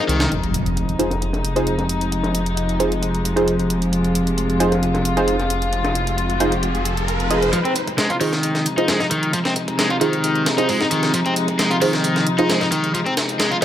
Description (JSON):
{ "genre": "breakbeat, breaks", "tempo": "133 BPM", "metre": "4/4", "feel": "straight", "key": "F minor", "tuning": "A4 = 441 Hz", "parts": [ { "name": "dark studio string section", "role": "sustained chords", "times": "0.0-13.6 s", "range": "C3 to Bb4", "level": "-22 LUFS", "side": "left 1 dB", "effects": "sidechain pumping, low-pass filter" }, { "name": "crunchy overdriven guitar", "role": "riff", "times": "0.0-0.3, 7.5-13.6 s", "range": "Eb3 to F4", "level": "-20 LUFS", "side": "equal", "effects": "low-pass filter, ping-pong delay" }, { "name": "detuned saw bass", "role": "bass", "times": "0.1-7.5 s", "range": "F1 to C2", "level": "-24 LUFS", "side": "equal", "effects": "none" }, { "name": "electronic hi-hat", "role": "drums", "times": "0.1-13.6 s", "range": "none", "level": "-29 LUFS", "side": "right 1 dB", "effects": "none" }, { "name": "breakbeat sampler-style drum kit", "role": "drums", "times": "0.2-13.6 s", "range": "hi-hat, kick drum, snare drum", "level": "-24 LUFS", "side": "equal", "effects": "high-pass filter on kick, low-pass filter on kick, high-pass filter on hats, low-pass filter on hats, high-pass filter on snare, low-pass filter on snare" }, { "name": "impact and riser", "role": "sound effects", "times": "0.3-7.5 s", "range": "none", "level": "-26 LUFS", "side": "equal", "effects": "none" }, { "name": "band-passed chord stab", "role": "stabs", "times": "1.0-13.6 s", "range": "Eb4 to Eb5", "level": "-22 LUFS", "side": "right 2 dB", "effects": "chorus, ping-pong delay" } ], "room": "moderate studio reverb, RT60 0.5 s", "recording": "none", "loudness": "-17 LUFS", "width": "side -11 dB against mid", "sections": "0.3-7.5 A section; 7.5-13.6 B section", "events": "impact 0.3-2.1; filter sweep on synth stab 0.3-7.5; filter sweep on string section 0.3-7.5; riser 5.1-7.5; build-up 7.5-13.6", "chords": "0.3 Fm7", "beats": "| 0.32 0.77 1.22 1.67 | 2.12 2.57 3.02 3.47 | 3.92 4.38 4.83 5.28 | 5.73 6.18 6.63 7.08 | 7.53 7.99 8.44 8.89 | 9.34 9.79 10.24 10.69 | 11.14 11.59 12.04 12.50 | 12.95 13.40" }